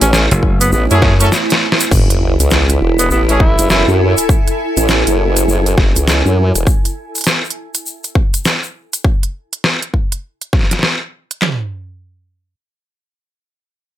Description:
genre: glitch hop.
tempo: 101 BPM.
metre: 4/4.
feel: swing 61% on 16ths.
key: F# minor.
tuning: A4 = 442 Hz.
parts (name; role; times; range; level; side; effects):
breathy tenor saxophone; melody; 0.0-3.9 s; B3 to E4; -19 LUFS; right 1 dB; vintage 12-bit sampler grit, ping-pong delay.
dark analog pad; sustained chords; 0.0-1.9 s; A3 to C#5; -26 LUFS; right 3 dB; chorus, sidechain pumping.
formant-sweep wobble bass; bass; 0.0-6.7 s; E1 to F#2; -13 LUFS; equal; chorus.
dubstep drum kit; drums; 0.0-11.4 s; crash cymbal, hi-hat, snare drum; -15 LUFS; equal; none.
egg shaker; percussion; 0.0-9.0 s; none; -23 LUFS; left 4 dB; none.
granular cloud pad; texture; 0.0-6.7 s; E4 to G#5; -20 LUFS; right 1 dB; built-in reverb, sidechain pumping.
slap bass; bass; 0.3-0.7 s; F#1; -14 LUFS; equal; none.
dubstep drum kit; drums; 0.4-11.6 s; handclaps, kick drum, snare drum, toms; -14 LUFS; equal; none.
bright horn section; stabs; 0.9-3.4 s; A3 to A4; -18 LUFS; equal; sidechain pumping, ping-pong delay.
sub drop; sound effects; 1.9-4.3 s; none; -22 LUFS; equal; none.
room: light reverb.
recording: none.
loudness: -12 LUFS.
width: side -12 dB against mid.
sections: 0.0-1.9 A section; 1.9-11.4 B section; 11.4-13.8 C section.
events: drop 0.0-1.9; break 1.3-1.9; drum fill 1.3-1.9; impact 1.9-4.3.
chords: 0.0 F#m9; 11.4 N.C..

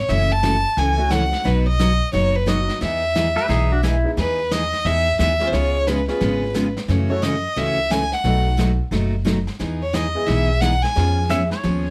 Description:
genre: country, western swing.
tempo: 177 BPM.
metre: 4/4.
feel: swing 62% on 8ths.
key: E major.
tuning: A4 = 440 Hz.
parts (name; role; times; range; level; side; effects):
clear fiddle; melody; 0.0-11.3 s; B4 to A5; -24 LUFS; equal; none.
upright bass; bass; 0.0-11.9 s; F#1 to F#2; -24 LUFS; equal; none.
picked steel-string acoustic guitar; accompaniment; 0.1-11.9 s; B2 to G#4; -26 LUFS; equal; none.
vintage brush drum kit; drums; 0.1-11.9 s; brushed snare drum, hi-hat, snare drum; -32 LUFS; equal; none.
bright upright piano; accompaniment; 1.0-11.5 s; F#3 to A4; -30 LUFS; equal; none.
pedal steel guitar; second line; 3.4-4.1, 11.3-11.9 s; D4 to E5; -26 LUFS; equal; none.
room: light reverb.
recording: none.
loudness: -20 LUFS.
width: mono.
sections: 0.0-4.2 A section; 4.2-11.9 B section.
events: none.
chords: 0.1 F#m7; 1.5 B; 2.8 Emaj7; 5.5 C#7; 6.9 F#m7; 8.2 B7; 9.6 Emaj7; 11.0 C#7/E#.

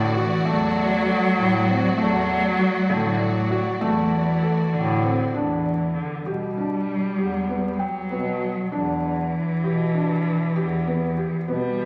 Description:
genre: contemporary instrumental, chamber music in an uneven meter.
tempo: 196 BPM (eighths).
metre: 11/8.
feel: straight.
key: E minor.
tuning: A4 = 440 Hz.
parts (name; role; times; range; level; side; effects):
rich cello; second line; 0.0-11.9 s; D3 to G3; -26 LUFS; equal; none.
rich studio string section; sustained chords; 0.0-5.3 s; A3 to D5; -29 LUFS; equal; none.
warm bass clarinet; bass; 0.0-11.9 s; E2 to B2; -31 LUFS; equal; none.
felt-muted upright piano; arpeggios; 0.2-11.9 s; A3 to G5; -29 LUFS; equal; none.
room: wet concert hall reverb, RT60 2.1 s.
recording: vinyl crackle.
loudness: -23 LUFS.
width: mono.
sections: 0.0-5.3 A section; 5.3-11.9 B section.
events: none.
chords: 0.0 D/E; 5.3 Em7.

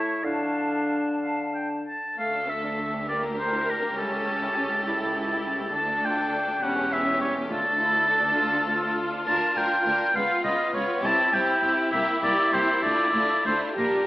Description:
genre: quick classical-period movement for symphony orchestra.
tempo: 61-70 BPM (dotted quarters).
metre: 6/8.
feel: rubato.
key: D minor.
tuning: A4 = 440 Hz.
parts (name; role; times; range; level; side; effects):
clear oboe; second line; 0.0-14.1 s; A4 to A5; -24 LUFS; equal; none.
hollow flute section; second line; 0.0-1.8 s; A5; -34 LUFS; equal; none.
warm clarinet; second line; 0.0-1.8 s; D4 to E4; -28 LUFS; left 1 dB; none.
warm bassoon; accompaniment; 0.0-1.8 s; D3 to A3; -33 LUFS; equal; none.
rich studio violin section; melody; 2.2-14.1 s; F4 to Cb5; -35 LUFS; left 2 dB; none.
rich studio violin section; second line; 2.2-14.1 s; G3 to G4; -33 LUFS; left 1 dB; none.
rich studio cello section; bass; 2.2-13.8 s; C2 to Bb2; -36 LUFS; right 1 dB; none.
warm studio double bass section; bass; 2.2-13.8 s; E1 to D2; -39 LUFS; right 1 dB; none.
rich studio viola section; accompaniment; 3.1-14.1 s; C#4 to Bb4; -30 LUFS; equal; none.
room: wet scoring stage reverb, RT60 1.9 s.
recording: AM radio sound.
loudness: -22 LUFS.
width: side -17 dB against mid.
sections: 0.0-2.2 A section; 2.2-14.1 B section.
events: none.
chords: 0.2 Dm; 3.1 Em7b5/D (rootless); 4.0 A7/C#; 5.8 D5; 6.6 C#dim/E; 7.5 Dm; 9.3 Bb/D; 10.1 Db7; 11.0 C; 12.8 Dm.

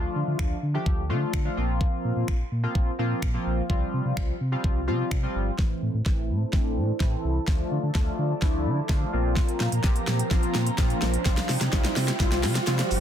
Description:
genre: dance-pop.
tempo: 127 BPM.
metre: 4/4.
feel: straight.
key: D minor.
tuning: A4 = 440 Hz.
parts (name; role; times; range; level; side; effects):
chorused polysynth; accompaniment; 0.0-13.0 s; E3 to G4; -29 LUFS; left 1 dB; sidechain pumping, low-pass filter.
sub bass with octave; bass; 0.0-13.0 s; G1 to D3; -27 LUFS; equal; sidechain pumping.
pop drum kit; drums; 0.4-13.0 s; finger snaps, hi-hat, kick drum, shaker, snare drum; -25 LUFS; equal; soft clipping on snare.
airy breathy pad; sustained chords; 6.2-13.0 s; F3 to Bb5; -34 LUFS; right 2 dB; chorus, phaser, sidechain pumping, low-pass filter.
riser; sound effects; 8.1-13.0 s; none; -36 LUFS; right 2 dB; none.
group handclap; percussion; 9.8-12.8 s; none; -40 LUFS; left 7 dB; none.
room: little or no reverb.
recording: dense, heavily limited modern master.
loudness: -23 LUFS.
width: side -10 dB against mid.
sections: 0.0-5.6 A section; 5.6-13.0 B section.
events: build-up 5.6-13.0; drum fill 5.6-13.0; filter sweep 5.6-13.0; riser 8.1-13.0.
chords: 0.0 Dm; 1.6 Bbsus2; 3.7 Csus4; 5.6 Am; 7.5 Dm; 9.1 Bbsus2; 11.3 Csus4.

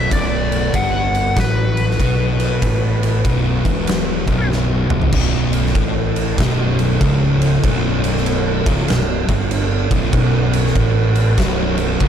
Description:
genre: stoner and doom metal.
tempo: 96 BPM.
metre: 4/4.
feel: swing 64% on 8ths.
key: unclear.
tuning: A4 = 439 Hz.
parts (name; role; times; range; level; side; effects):
fuzz lead guitar; melody; 0.0-4.5 s; B4 to F#5; -23 LUFS; left 1 dB; wah, distortion, ping-pong delay.
bright tonewheel organ; sustained chords; 0.0-5.1, 10.1-12.1 s; B3 to B4; -32 LUFS; equal; overdrive, chorus vibrato, fast rotary speaker.
thick fuzz guitar; riff; 0.0-12.1 s; B1 to B2; -21 LUFS; left 6 dB; distortion.
thick fuzz guitar; riff; 0.0-12.1 s; B1 to B2; -22 LUFS; right 7 dB; distortion.
fuzz fingered electric bass; bass; 0.0-12.1 s; B0 to B1; -22 LUFS; equal; overdrive.
oversized low-tuned drum kit; drums; 0.1-12.1 s; crash cymbal, kick drum, ride cymbal, snare drum, toms; -19 LUFS; right 1 dB; none.
fuzz guitar; riff; 5.1-12.1 s; B1 to A2; -25 LUFS; equal; none.
room: small room reverb.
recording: dark, warm production.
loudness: -14 LUFS.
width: side -8 dB against mid.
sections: 0.0-5.1 A section; 5.1-12.1 B section.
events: drum fill 4.5-5.1.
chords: 0.0 B5.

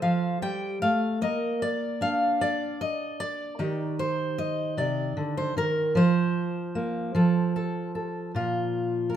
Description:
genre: folk, solo fingerstyle acoustic guitar.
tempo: 50 BPM (dotted quarters).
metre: 6/8.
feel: straight.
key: Bb major.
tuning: A4 = 440 Hz.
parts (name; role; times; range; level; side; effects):
fingerpicked steel-string acoustic guitar; solo; 0.0-9.2 s; Bb2 to G5; -24 LUFS; right 1 dB; none.
room: moderate large studio reverb, RT60 1.2 s.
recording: minimal, uncompressed stereo recording.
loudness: -25 LUFS.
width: side -10 dB against mid.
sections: 0.0-8.4 A section.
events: none.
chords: 0.0 F; 1.2 Bb; 3.6 Eb; 6.0 Fsus4; 7.1 F; 8.4 Bb5.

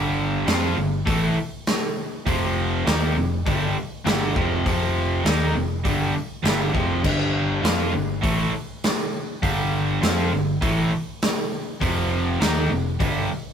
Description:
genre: hard rock.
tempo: 101 BPM.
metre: 4/4.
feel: straight.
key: G minor.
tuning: A4 = 439 Hz.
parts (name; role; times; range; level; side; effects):
cranked stack guitar; riff; 0.0-13.3 s; F2 to F4; -23 LUFS; equal; overdrive.
picked electric bass; bass; 0.0-13.3 s; F1 to F2; -25 LUFS; equal; none.
huge arena drum kit; drums; 0.5-13.1 s; crash cymbal, hi-hat, kick drum, snare drum; -25 LUFS; equal; none.
room: moderate studio reverb, RT60 0.6 s.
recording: rough rehearsal-room recording, warm saturation.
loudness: -20 LUFS.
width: side -8 dB against mid.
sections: 0.0-13.5 A section.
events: none.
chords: 0.0 G5; 2.3 F5; 7.0 G5; 11.8 F5.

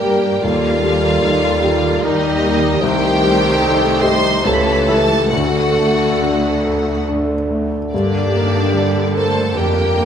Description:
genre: classical, romantic movement for piano and orchestra.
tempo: 68-78 BPM.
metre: 3/4.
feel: rubato.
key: G minor.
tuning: A4 = 440 Hz.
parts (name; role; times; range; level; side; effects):
clear grand piano; melody; 0.0-10.1 s; C2 to Bb4; -20 LUFS; left 2 dB; none.
clear studio violin section; melody; 0.0-10.1 s; D5 to C6; -23 LUFS; equal; none.
bright studio violin section; second line; 0.0-10.1 s; D4 to C5; -24 LUFS; left 1 dB; none.
dark clarinet; second line; 0.0-10.1 s; G4 to Bb4; -25 LUFS; right 1 dB; none.
mellow concert flute; second line; 0.0-10.1 s; G4 to Eb5; -23 LUFS; left 1 dB; none.
dark bassoon; accompaniment; 0.0-10.1 s; D3 to G3; -23 LUFS; right 2 dB; none.
warm studio viola section; accompaniment; 0.0-10.1 s; D3 to Bb3; -24 LUFS; right 2 dB; none.
mellow French horn section; sustained chords; 0.0-10.1 s; D4 to C5; -24 LUFS; left 4 dB; none.
rich studio cello section; bass; 0.0-10.1 s; C2 to G2; -22 LUFS; right 2 dB; none.
room: moderate scoring stage reverb, RT60 1.5 s.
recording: none.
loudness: -13 LUFS.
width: side -8 dB against mid.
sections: 0.0-10.1 A section.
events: none.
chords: 0.4 Eb; 2.8 Am7b5/C; 4.4 A7/C#; 5.3 D; 7.9 Gm.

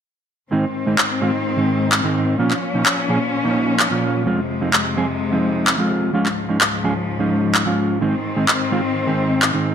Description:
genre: EDM, festival progressive house.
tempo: 128 BPM.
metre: 4/4.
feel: straight.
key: unclear.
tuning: A4 = 445 Hz.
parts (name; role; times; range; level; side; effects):
mellow electric guitar; accompaniment; 0.5-9.7 s; Ab2 to Ab4; -20 LUFS; right 2 dB; digital delay.
rich studio string section; sustained chords; 0.5-9.7 s; Db2 to Db4; -22 LUFS; left 3 dB; none.
electronic handclaps; drums; 1.0-9.5 s; none; -19 LUFS; equal; overdrive.
room: moderate digital room reverb, RT60 1.1 s, small room ambience.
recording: none.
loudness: -16 LUFS.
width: side -8 dB against mid.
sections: 0.5-9.7 A section.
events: none.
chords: 0.5 Ab; 2.4 Bbm; 4.3 Fm; 6.1 Db; 8.0 Ab.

